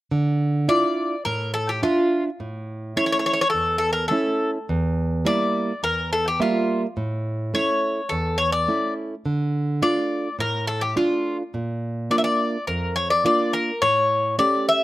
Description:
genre	greek folk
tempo	105 BPM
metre	4/4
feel	straight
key	D harmonic minor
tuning	A4 = 440 Hz
part	nylon-string guitar	accompaniment	0.1-14.8 s	E2 to E5	-24 LUFS	right 2 dB	none
part	Greek bouzouki	melody	0.7-14.8 s	F4 to E5	-21 LUFS	left 2 dB	none
room	little or no reverb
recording	recorded outdoors, with no room sound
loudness	-20 LUFS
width	side -15 dB against mid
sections	0.1-14.8 A section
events	none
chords	0.1 Dmadd9; 2.4 A; 4.7 Edim; 7.0 A; 9.3 Dm; 11.5 Bb; 13.8 A7

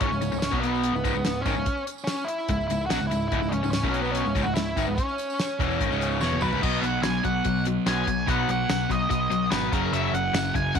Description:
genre	classic rock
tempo	145 BPM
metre	4/4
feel	straight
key	unclear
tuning	A4 = 439 Hz
part	octave-fuzz lead guitar	melody	0.0-10.8 s	B3 to G#5	-28 LUFS	equal	distortion, tape echo
part	overdriven electric guitar	riff	0.0-10.8 s	C#2 to B3	-28 LUFS	left 14 dB	none
part	sludgy distorted guitar	riff	0.0-10.8 s	C#2 to B3	-30 LUFS	right 12 dB	overdrive
part	growling picked electric bass	bass	0.0-10.8 s	C#1 to B1	-31 LUFS	equal	overdrive
part	damped 70s drum kit	drums	0.0-10.8 s	crash cymbal, hi-hat, kick drum, snare drum, tambourine, toms	-30 LUFS	equal	none
part	tambourine	percussion	0.1-6.6, 10.3-10.4 s	none	-45 LUFS	right 15 dB	none
room	small room ambience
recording	1960s-style stereo with parts hard left and right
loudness	-23 LUFS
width	side -7 dB against mid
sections	0.0-6.6 A section; 6.6-10.8 B section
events	drum fill 6.2-6.6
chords	0.0 C#5; 0.5 B5; 0.9 C#m; 3.8 B5; 4.3 C#m; 6.6 B; 9.7 F#5

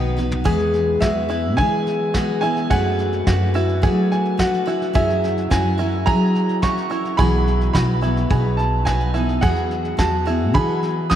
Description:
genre	acoustic folk duo or small band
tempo	107 BPM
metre	4/4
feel	straight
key	E major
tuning	A4 = 440 Hz
part	picked steel-string acoustic guitar	accompaniment	0.0-11.2 s	B2 to B4	-23 LUFS	left 2 dB	none
part	upright bass	bass	0.0-11.2 s	B1 to F#3	-22 LUFS	equal	none
part	soft brush drum kit	drums	0.2-11.2 s	kick drum, snare drum, toms	-24 LUFS	equal	none
part	open-back banjo	arpeggios	0.5-11.2 s	E4 to G#4	-26 LUFS	right 4 dB	none
part	clear upright piano	melody	1.0-11.2 s	E5 to D#6	-24 LUFS	right 2 dB	tape echo
room	moderate cathedral reverb, RT60 5.3 s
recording	in a vast, echoing space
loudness	-17 LUFS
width	side -10 dB against mid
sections	0.5-11.2 A section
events	drum fill 0.2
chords	0.5 E; 2.7 D6/F#; 4.9 F#7; 7.2 Bsus4; 8.3 B; 9.4 Eadd9

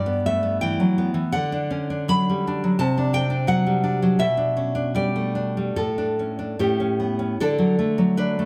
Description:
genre	romantic piece for solo classical guitar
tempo	72-88 BPM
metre	2/4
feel	rubato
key	D major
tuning	A4 = 440 Hz
part	nylon-string guitar	solo	0.0-8.5 s	G2 to B5	-22 LUFS	equal	none
room	wet recital hall reverb, RT60 1.6 s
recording	none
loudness	-22 LUFS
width	mono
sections	0.0-7.4 A section; 7.4-8.5 B section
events	none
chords	0.0 Em/G; 1.3 D; 2.8 D7/C; 4.2 G/B; 5.8 D5/A; 6.6 A; 7.4 D

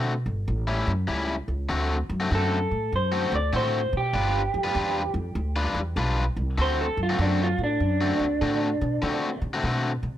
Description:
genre	electric blues shuffle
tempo	98 BPM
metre	4/4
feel	swing 65% on 8ths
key	D mixolydian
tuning	A4 = 440 Hz
part	overdriven electric guitar	riff	0.0-9.9 s	A2 to B4	-28 LUFS	left 2 dB	none
part	upright bass	bass	0.0-10.2 s	G1 to D3	-27 LUFS	equal	none
part	electric guitar through a small old amp	melody	2.3-9.4 s	D4 to D5	-27 LUFS	right 2 dB	none
room	light reverb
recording	none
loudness	-23 LUFS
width	side -12 dB against mid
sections	0.0-1.7 A section; 1.7-10.2 B section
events	clean electric guitar solo 1.7-10.2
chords	0.5 A7; 1.7 D7; 4.1 G7; 6.6 D7

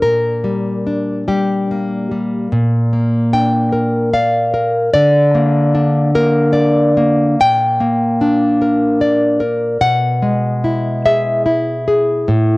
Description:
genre	romantic piece for solo classical guitar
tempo	73 BPM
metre	3/4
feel	rubato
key	unclear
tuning	A4 = 440 Hz
part	nylon-string guitar	solo	0.0-12.6 s	A2 to G5	-12 LUFS	equal	cassette tape
room	moderate spring reverb, RT60 1.6 s, small room ambience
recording	home recording on cassette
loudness	-12 LUFS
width	side -22 dB against mid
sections	0.0-12.6 A section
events	none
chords	0.0 Gm/Bb; 2.5 Bb; 4.9 Bb/D; 7.4 Gm/Bb; 9.8 E/B

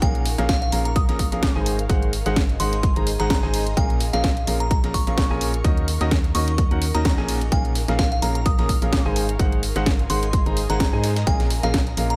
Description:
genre	piano house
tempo	128 BPM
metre	4/4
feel	swing 55% on 16ths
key	Bb minor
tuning	A4 = 439 Hz
part	glassy synth bell	melody	0.0-12.2 s	F5 to Eb6	-31 LUFS	equal	chorus
part	clear concert grand piano	riff	0.0-12.1 s	Bb2 to Bb5	-29 LUFS	equal	vintage 12-bit sampler grit, sidechain pumping
part	organ-like FM bass	bass	0.0-12.2 s	Ab1 to Ab2	-27 LUFS	equal	sidechain pumping
part	dusty soul sampler-style drum kit	drums	0.0-12.1 s	hi-hat, snare drum	-40 LUFS	equal	none
part	electronic kick drum	drums	0.0-11.8 s	none	-24 LUFS	equal	overdrive
part	house drum kit	drums	0.0-12.2 s	hi-hat, snare drum	-30 LUFS	equal	overdrive
part	ethereal airy pad	texture	0.0-12.2 s	Eb4 to Db6	-37 LUFS	equal	ensemble chorus, built-in reverb, sidechain pumping
room	light reverb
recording	none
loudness	-21 LUFS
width	mono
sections	0.0-12.2 A section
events	none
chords	0.0 Bbm7; 1.7 Ab7; 3.8 Bbm7; 5.6 Ebm7; 7.3 Bbm7; 9.2 Ab7; 11.3 Bbm7

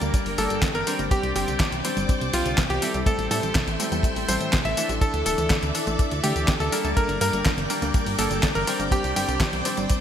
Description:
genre	italo disco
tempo	123 BPM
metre	4/4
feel	straight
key	unclear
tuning	A4 = 437 Hz
part	string machine, full ensemble	sustained chords	0.0-10.0 s	A4 to D6	-30 LUFS	equal	ensemble chorus
part	wide unison pluck	arpeggios	0.0-10.0 s	C3 to D4	-33 LUFS	right 4 dB	vintage 12-bit sampler grit, digital delay
part	bright concert grand piano	stabs	0.0-10.0 s	E3 to C5	-30 LUFS	left 3 dB	none
part	chorused synth bass	bass	0.0-9.9 s	D1 to A2	-29 LUFS	equal	none
part	detuned 8-bit digital drum machine	drums	0.0-10.0 s	handclaps, hi-hat, snare drum, tambourine	-28 LUFS	equal	overdrive, gated reverb
part	kick drum	drums	0.1-10.0 s	none	-23 LUFS	equal	none
part	bright electric grand piano	melody	0.4-9.4 s	F4 to E5	-28 LUFS	equal	ping-pong delay
room	moderate lush hall reverb, RT60 2.5 s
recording	bright 1980s-style digital production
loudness	-21 LUFS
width	side -9 dB against mid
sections	0.0-10.0 A section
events	none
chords	0.0 Gm; 1.1 Csus2; 3.1 Am7; 5.0 Dsus2; 7.0 Gm; 8.9 Csus2

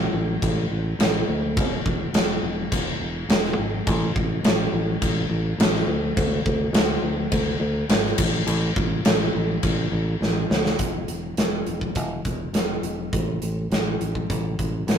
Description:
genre	hard rock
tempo	104 BPM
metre	4/4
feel	straight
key	unclear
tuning	A4 = 440 Hz
part	fingered electric bass	bass	0.0-15.0 s	E1 to D2	-25 LUFS	equal	none
part	big rock drum kit	drums	0.4-15.0 s	crash cymbal, hi-hat, kick drum, snare drum	-23 LUFS	equal	none
room	light reverb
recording	rough rehearsal-room recording, tube saturation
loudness	-21 LUFS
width	side -8 dB against mid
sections	0.0-10.8 A section; 10.8-15.0 B section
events	drum fill 10.2-10.8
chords	none

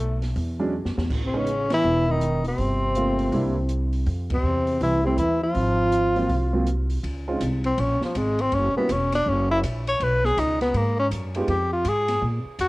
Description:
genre	jazz, small-group swing and bop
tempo	162 BPM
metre	4/4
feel	swing 63% on 8ths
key	Db major from 7.0 s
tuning	A4 = 441 Hz
part	breathy tenor saxophone	melody	0.0-12.7 s	F3 to Db5	-24 LUFS	left 1 dB	none
part	upright bass	bass	0.0-12.7 s	E1 to Bb2	-25 LUFS	equal	none
part	open jazz drum kit	drums	0.2-12.7 s	crash cymbal, hi-hat, kick drum, ride cymbal, snare drum	-34 LUFS	equal	cassette tape
part	warm upright piano	accompaniment	0.6-8.9, 11.4-11.5 s	F#3 to G4	-28 LUFS	right 2 dB	cassette tape
part	dark trombone	second line	1.2-6.6 s	C3 to F3	-28 LUFS	right 1 dB	cassette tape
room	light reverb, small room ambience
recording	home recording on cassette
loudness	-21 LUFS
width	side -20 dB against mid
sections	0.0-7.0 A section; 7.0-12.7 B section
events	drum fill 0.7-1.1; band accent 1.7, 4.3; tenor saxophone solo 7.0-12.7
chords	0.4 E13; 1.1 A(#11); 2.6 Gm11; 3.3 C9; 4.1 Fmaj7(no3); 5.6 Ab13; 7.0 Dbmaj7(no3); 8.5 Gb7; 10.0 Cbsus2; 11.5 Fmadd9

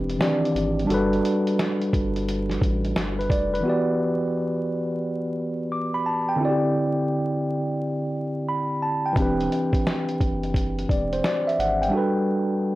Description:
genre	lo-fi hip hop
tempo	87 BPM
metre	4/4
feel	swing 66% on 16ths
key	E minor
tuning	A4 = 441 Hz
part	tine electric piano	accompaniment	0.0-12.8 s	D3 to D6	-22 LUFS	equal	slow stereo tremolo
part	saturated sub bass	bass	0.0-3.6, 9.2-11.9 s	E1 to A1	-30 LUFS	equal	none
part	lo-fi sampler-style drum kit	drums	0.1-3.6, 9.2-11.9 s	hi-hat, kick drum, snare drum	-26 LUFS	equal	none
room	moderate studio reverb, RT60 0.6 s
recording	dry, gritty hardware recording, vinyl crackle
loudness	-21 LUFS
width	side -17 dB against mid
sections	0.0-3.6 A section; 3.6-12.8 B section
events	none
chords	0.0 Cmaj9/E; 0.9 Gmaj9; 3.6 Em9; 6.4 D9sus4; 9.2 Cmaj9/E; 11.9 Gmaj9

